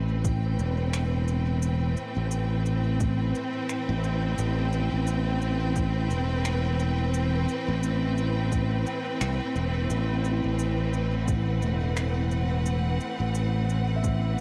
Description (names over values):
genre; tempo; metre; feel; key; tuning
ambient dub; 87 BPM; 4/4; swing 57% on 16ths; A dorian; A4 = 440 Hz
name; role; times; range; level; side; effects
clear studio string section; sustained chords; 0.0-14.4 s; A2 to G5; -32 LUFS; equal; cassette tape
modern bright fingered electric bass; bass; 0.0-14.4 s; E1 to C2; -28 LUFS; equal; none
electronic kick drum; drums; 0.2-14.2 s; none; -32 LUFS; equal; cassette tape
electronic shaker and finger snaps; drums; 0.2-14.4 s; none; -40 LUFS; equal; overdrive, cassette tape, dub echo
handpan; arpeggios; 10.3-14.4 s; A3 to E5; -39 LUFS; equal; cassette tape, analog delay
room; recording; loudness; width
light reverb; home recording on cassette; -27 LUFS; mono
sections
0.0-14.4 A section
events
none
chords
0.0 Am7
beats
0.24 0.93 | 1.62 2.31 3.00 3.69 | 4.38 5.07 5.76 6.45 | 7.14 7.83 8.52 9.21 | 9.90 10.59 11.28 11.97 | 12.66 13.35 14.04